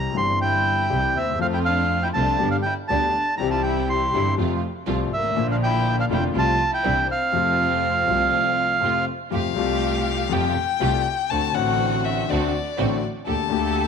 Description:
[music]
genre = tango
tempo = 121 BPM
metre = 4/4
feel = rubato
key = F major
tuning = A4 = 440 Hz
[part]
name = bandoneon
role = melody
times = 0.0-9.1 s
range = E5 to C6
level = -22 LUFS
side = right 3 dB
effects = none
[part]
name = warm concert grand piano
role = accompaniment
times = 0.0-13.9 s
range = F1 to A4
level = -25 LUFS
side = left 9 dB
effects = none
[part]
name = dark double bass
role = bass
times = 0.0-13.9 s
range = F1 to F2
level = -27 LUFS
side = right 4 dB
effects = none
[part]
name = rich violin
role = second line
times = 0.4-13.9 s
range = Bb3 to A5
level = -28 LUFS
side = left 10 dB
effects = none
[part]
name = rich studio string section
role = stabs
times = 1.4-13.9 s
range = F3 to A4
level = -30 LUFS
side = right 13 dB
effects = none
[sound]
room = light reverb, small room ambience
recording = 1960s-style stereo with parts hard left and right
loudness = -19 LUFS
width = side -6 dB against mid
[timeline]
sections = 0.0-9.3 A section; 9.3-13.9 B section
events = violin solo 9.3-13.9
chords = 0.0 C; 1.4 F; 2.4 G; 3.4 C; 4.4 F; 5.4 Bb; 6.3 F/C; 6.8 Cadd9; 7.3 F; 9.3 Fadd9; 11.3 D7; 13.3 Gmadd9/D

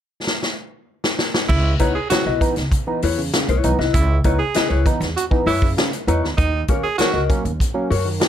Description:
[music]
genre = funk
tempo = 98 BPM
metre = 4/4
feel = straight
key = C# dorian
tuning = A4 = 440 Hz
[part]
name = swinging big-band drum kit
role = drums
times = 0.3-8.3 s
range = crash cymbal, hi-hat, kick drum, snare drum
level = -20 LUFS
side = equal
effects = none
[part]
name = breathy tenor saxophone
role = second line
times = 1.5-7.2 s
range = D#4 to G#4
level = -23 LUFS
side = right 6 dB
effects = plate reverb
[part]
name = barky tine electric piano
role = stabs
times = 1.5-8.3 s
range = C#3 to D#4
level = -25 LUFS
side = right 2 dB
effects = analog chorus, plate reverb
[part]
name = upright bass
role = bass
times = 1.5-8.2 s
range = B1 to F#2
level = -21 LUFS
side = equal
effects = none
[part]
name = mellow electric guitar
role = accompaniment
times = 1.8-8.1 s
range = E4 to D#5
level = -23 LUFS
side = left 7 dB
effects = plate reverb
[sound]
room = light reverb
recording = none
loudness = -17 LUFS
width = side -10 dB against mid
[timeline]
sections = 0.0-1.5 A section; 1.5-8.3 B section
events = drum fill 0.3-1.5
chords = 0.0 N.C.; 1.5 C#m7; 6.4 D#m7

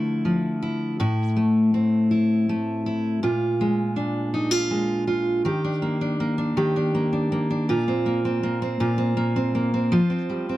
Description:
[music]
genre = pop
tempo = 54 BPM (dotted quarters)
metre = 6/8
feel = straight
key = unclear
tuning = A4 = 440 Hz
[part]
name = fingerpicked steel-string acoustic guitar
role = solo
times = 0.0-10.6 s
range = A2 to G4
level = -21 LUFS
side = equal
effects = none
[sound]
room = light reverb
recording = dry, close 1970s-style studio recording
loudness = -21 LUFS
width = side -15 dB against mid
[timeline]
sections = 0.0-5.5 A section; 5.5-10.6 B section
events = none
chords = 0.0 Dmadd9; 1.0 Am; 3.2 Bb7; 5.5 Ebmaj7; 7.7 Bbsus2; 9.9 Fsus2

